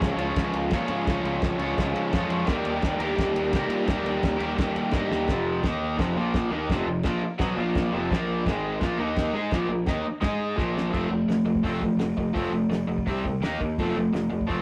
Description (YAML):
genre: garage rock duo or trio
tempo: 170 BPM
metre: 4/4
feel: straight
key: unclear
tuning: A4 = 440 Hz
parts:
  - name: raw garage guitar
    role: riff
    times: 0.0-14.6 s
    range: F2 to Db5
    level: -28 LUFS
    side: equal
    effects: overdrive
  - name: fuzz fingered electric bass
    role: bass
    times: 0.0-14.6 s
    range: F1 to Eb3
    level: -35 LUFS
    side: equal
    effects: overdrive, tube saturation
  - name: cloth-damped thuddy drum kit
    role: drums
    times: 0.0-14.6 s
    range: crash cymbal, hi-hat, kick drum, ride cymbal, snare drum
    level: -32 LUFS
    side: equal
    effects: none
room: moderate small room ambience, RT60 0.5 s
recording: rough rehearsal-room recording, warm saturation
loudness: -26 LUFS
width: mono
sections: 0.0-5.3 A section; 5.3-10.9 B section; 10.9-14.6 C section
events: drum fill 5.1, 10.6-10.9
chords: 0.0 Db; 2.5 Eb; 5.3 F5; 5.6 Eb5; 6.0 F5; 6.2 Bb5; 6.5 F5; 7.6 Bb5; 7.9 F5; 8.1 Bb5; 8.5 Ab5; 8.8 Bb5; 9.0 Eb5; 9.3 Bb5; 10.2 Ab5; 10.6 Bb5; 10.9 F; 13.1 C5; 13.4 Eb5; 13.8 F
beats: 0.01 0.36 0.71 | 1.06 1.41 1.76 2.12 | 2.47 2.82 3.17 3.52 | 3.87 4.22 4.58 4.93 | 5.28 5.63 5.99 6.34 | 6.69 7.04 7.40 7.75 | 8.10 8.45 8.81 9.16 | 9.51 9.86 10.22 10.57 | 10.93 11.28 11.64 11.99 | 12.35 12.70 13.06 13.41 | 13.77 14.13 14.48